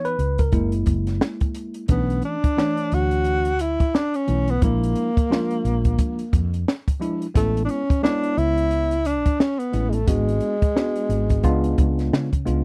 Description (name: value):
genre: hip hop, jazz-hop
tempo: 88 BPM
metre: 4/4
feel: swing 59% on 16ths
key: B dorian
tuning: A4 = 441 Hz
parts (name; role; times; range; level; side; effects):
- mellow tine electric piano; accompaniment; 0.0-12.6 s; E3 to C#5; -28 LUFS; equal; none
- compact cocktail drum kit; drums; 0.0-12.6 s; hi-hat, kick drum, snare drum; -23 LUFS; equal; none
- woody fretless electric bass; bass; 0.2-12.6 s; F#1 to C#3; -25 LUFS; equal; none
- breathy tenor saxophone; melody; 1.9-12.1 s; G#3 to F#4; -26 LUFS; equal; none
room: little or no reverb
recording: dry, close 1970s-style studio recording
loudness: -22 LUFS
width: mono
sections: 0.0-1.9 A section; 1.9-12.6 B section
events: tine electric piano solo 0.0-1.9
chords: 0.0 C#m7; 0.5 F#7; 1.9 Bm11; 4.6 A#7#11; 7.3 Amaj7; 10.1 G#m7b5; 11.4 C#7b9